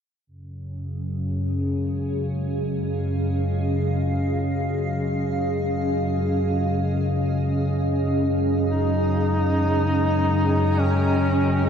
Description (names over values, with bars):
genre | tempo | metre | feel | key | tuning
dark ambient drone | free time | none | none | unclear | A4 = 440 Hz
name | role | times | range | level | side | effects
granular cloud pad | sustained chords | 1.0-11.7 s | C#4 to G5 | -26 LUFS | equal | built-in reverb
analog drone | drone | 0.4-11.7 s | F#2 to C#3 | -22 LUFS | equal | chorus
warm duduk | melody | 8.7-11.7 s | C#4 to D#4 | -24 LUFS | equal | ping-pong delay
room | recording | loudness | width
wet huge ambient reverb, RT60 8.1 s | dark, warm production | -21 LUFS | side -8 dB against mid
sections
0.3-11.7 A section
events
none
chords
0.3 C#